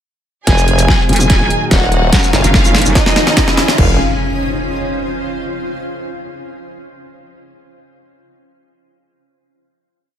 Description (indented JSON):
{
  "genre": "heavy wobble dubstep",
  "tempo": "145 BPM",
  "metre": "4/4",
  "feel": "half-time",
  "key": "F phrygian",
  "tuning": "A4 = 438 Hz",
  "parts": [
    { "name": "dark studio violin section", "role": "melody", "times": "0.5-3.9 s", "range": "Eb4 to Ab5", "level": "-18 LUFS", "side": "equal", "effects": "ping-pong delay" },
    { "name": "lush unison pad", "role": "sustained chords", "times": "0.5-4.0 s", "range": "Ab2 to Bb4", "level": "-22 LUFS", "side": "equal", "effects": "chorus, sidechain pumping" },
    { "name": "formant-sweep wobble bass", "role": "bass", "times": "0.5-4.0 s", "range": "Eb1 to Gb1", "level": "-14 LUFS", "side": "equal", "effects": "chorus, overdrive" },
    { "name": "dubstep drum kit", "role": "drums", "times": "0.5-3.9 s", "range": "crash cymbal, hi-hat, shaker, snare drum", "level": "-15 LUFS", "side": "equal", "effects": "overdrive" },
    { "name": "electronic kick drum", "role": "drums", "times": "0.5-3.9 s", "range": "none", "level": "-15 LUFS", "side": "equal", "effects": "overdrive" },
    { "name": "riser and impact", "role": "sound effects", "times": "2.2-5.4 s", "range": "none", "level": "-22 LUFS", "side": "equal", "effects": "none" },
    { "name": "vowel-sweep wobble bass", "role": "bass", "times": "1.1-2.9 s", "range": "Eb1 to Gb1", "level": "-14 LUFS", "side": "equal", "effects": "chorus, overdrive" }
  ],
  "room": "light reverb",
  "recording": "none",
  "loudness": "-11 LUFS",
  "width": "side -10 dB against mid",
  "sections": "0.5-3.8 build; 3.8-5.4 final chord",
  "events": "build-up 0.5-3.8; drum fill 0.5-3.8",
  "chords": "0.5 Fm; 1.3 Ebm; 2.1 Gb; 3.0 Dbadd9; 3.8 Fm",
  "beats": "| 0.47 0.89 1.30 1.71 | 2.13 2.54 2.96 3.37 | 3.78 4.20 4.61 5.02"
}